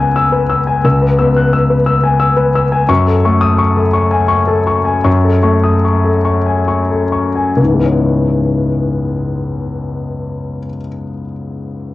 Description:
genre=neoclassical minimalist piano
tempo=64-90 BPM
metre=3/4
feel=rubato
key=C# minor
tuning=A4 = 439 Hz
part: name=warm concert grand piano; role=solo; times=0.0-11.9 s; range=C#2 to F#6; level=-11 LUFS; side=left 2 dB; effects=cassette tape
room=light reverb, small room ambience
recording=home recording on cassette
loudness=-11 LUFS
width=side -16 dB against mid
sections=0.0-7.6 A section; 7.6-11.9 B section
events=slowing down 1.9-7.6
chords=0.0 C#m7; 2.9 F#madd9; 7.6 C#m7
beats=0.14 | 0.84 1.54 2.21 | 2.89 3.58 4.31 | 5.06 5.84 6.69 | 7.59 8.47 9.35 | 10.23 11.12

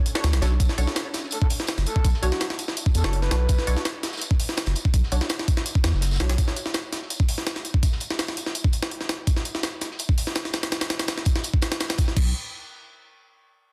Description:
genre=drum and bass, jungle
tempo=166 BPM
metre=4/4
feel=straight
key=B minor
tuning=A4 = 440 Hz
part: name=ethereal airy pad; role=sustained chords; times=0.0-0.6 s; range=C#4 to C#5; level=-46 LUFS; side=equal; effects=none
part: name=filtered dub chord stab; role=stabs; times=0.1-6.3 s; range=D4 to C#5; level=-37 LUFS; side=equal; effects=analog chorus, dub echo
part: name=jungle sampler-style drum kit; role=drums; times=0.1-12.2 s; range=crash cymbal, hi-hat, kick drum, snare drum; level=-26 LUFS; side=equal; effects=none
part: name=vintage drum kit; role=drums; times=0.1-12.1 s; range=hi-hat, snare drum, tambourine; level=-40 LUFS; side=equal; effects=high-pass filter on hats, high-pass filter on snare, high-pass filter on perc, high-pass filter on room
part: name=saturated sub bass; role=bass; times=0.2-6.4, 12.2-12.3 s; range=F#1 to E2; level=-25 LUFS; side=equal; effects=none
part: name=breathy flute-like synth lead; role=melody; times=1.3-3.7 s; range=F#4 to B4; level=-35 LUFS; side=equal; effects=chorus, dub echo
room=small room ambience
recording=dense, heavily limited modern master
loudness=-24 LUFS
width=mono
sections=0.6-12.2 A section; 12.2-13.6 B section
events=none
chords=0.0 Bm9; 12.2 N.C.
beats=0.24 | 0.60 0.96 1.32 1.68 | 2.04 2.41 2.77 3.13 | 3.49 3.85 4.21 4.58 | 4.94 5.30 5.66 6.02 | 6.38 6.74 7.11 7.47 | 7.83 8.19 8.55 8.91 | 9.27 9.64 10.00 10.36 | 10.72 11.08 11.44 11.80 | 12.17

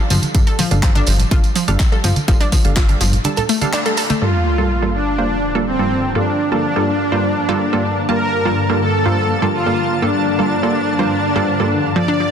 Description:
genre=progressive house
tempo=124 BPM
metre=4/4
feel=straight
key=G minor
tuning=A4 = 440 Hz
part: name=wide unison pluck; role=stabs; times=0.0-12.3 s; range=G2 to A5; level=-20 LUFS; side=right 3 dB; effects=sidechain pumping, tape echo
part: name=analog pluck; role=arpeggios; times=0.1-4.2, 12.0-12.3 s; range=F3 to A4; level=-21 LUFS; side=left 1 dB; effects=chorus, sidechain pumping, tape echo
part: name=plucky analog bass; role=bass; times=0.1-3.2 s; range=G1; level=-17 LUFS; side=equal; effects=sidechain pumping
part: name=house drum kit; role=drums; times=0.1-4.2 s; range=handclaps, hi-hat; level=-24 LUFS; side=right 2 dB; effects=none
part: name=tambourine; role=percussion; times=0.1-4.2 s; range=none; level=-28 LUFS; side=right 3 dB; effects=none
part: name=congas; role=percussion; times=0.2-4.2 s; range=none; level=-25 LUFS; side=right 3 dB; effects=sidechain pumping on perc
part: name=electronic kick drum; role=drums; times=0.3-2.9 s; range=none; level=-15 LUFS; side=equal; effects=none
part: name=soft supersaw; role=melody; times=4.2-12.3 s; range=C4 to D5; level=-19 LUFS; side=equal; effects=sidechain pumping, ping-pong delay
part: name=shimmering ambient pad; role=sustained chords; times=5.1-12.3 s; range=G2 to A5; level=-21 LUFS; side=left 2 dB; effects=chorus, built-in reverb, sidechain pumping
part: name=sub drop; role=sound effects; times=4.2-6.2 s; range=none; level=-21 LUFS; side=left 1 dB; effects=none
room=light reverb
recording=dense, heavily limited modern master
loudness=-14 LUFS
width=side -8 dB against mid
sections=0.0-4.2 A section; 4.2-12.3 B section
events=break 3.2-4.2; band accent 3.7; impact 4.2-6.2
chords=0.0 Dm/G; 4.2 Gm9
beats=| 0.35 0.83 1.31 1.80 | 2.28 2.77 3.25 3.73 | 4.22 4.70 5.18 5.67 | 6.15 6.64 7.12 7.60 | 8.09 8.57 9.05 9.54 | 10.02 10.51 10.99 11.47 | 11.96

